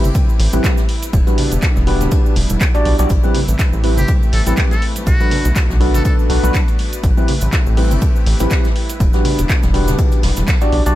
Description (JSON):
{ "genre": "deep house", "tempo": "122 BPM", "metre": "4/4", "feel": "swing 56% on 16ths", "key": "A dorian", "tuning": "A4 = 440 Hz", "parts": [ { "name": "warm analog pad", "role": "sustained chords", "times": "0.0-10.9 s", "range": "G3 to B4", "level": "-27 LUFS", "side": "left 2 dB", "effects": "chorus, sidechain pumping" }, { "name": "overdriven tine electric piano", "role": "stabs", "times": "0.0-11.0 s", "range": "C4 to D5", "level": "-21 LUFS", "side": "equal", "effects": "analog chorus, sidechain pumping, ping-pong delay" }, { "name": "rubbery square bass", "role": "bass", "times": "0.0-10.9 s", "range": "D1 to B1", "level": "-16 LUFS", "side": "equal", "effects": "sidechain pumping" }, { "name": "punchy analog drum machine", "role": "drums", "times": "0.0-10.9 s", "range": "handclaps, hi-hat", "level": "-25 LUFS", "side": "equal", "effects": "none" }, { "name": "cabasa", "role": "percussion", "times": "0.0-10.9 s", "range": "none", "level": "-32 LUFS", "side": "right 6 dB", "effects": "none" }, { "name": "congas", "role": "percussion", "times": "0.0-10.9 s", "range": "none", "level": "-26 LUFS", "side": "right 2 dB", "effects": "none" }, { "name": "electronic kick drum", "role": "drums", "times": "0.1-10.6 s", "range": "none", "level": "-15 LUFS", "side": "equal", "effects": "none" }, { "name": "jazz brush drum kit", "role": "drums", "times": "0.1-10.6 s", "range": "hi-hat, ride cymbal, snare drum", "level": "-31 LUFS", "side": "left 1 dB", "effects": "high-pass filter on cymbals, high-pass filter on hats, high-pass filter on snare, high-pass filter on room" }, { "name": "trumpet with metal mute", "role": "melody", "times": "4.0-6.1 s", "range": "F#4 to A4", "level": "-25 LUFS", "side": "left 1 dB", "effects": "ping-pong delay" } ], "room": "small room ambience", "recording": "none", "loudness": "-12 LUFS", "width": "side -14 dB against mid", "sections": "0.0-11.0 A section", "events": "drop 0.0-11.0; band accent 10.5", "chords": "0.0 Am9; 0.9 Em7; 3.1 Am9; 5.1 Bm7; 7.0 Am9; 8.8 Em7" }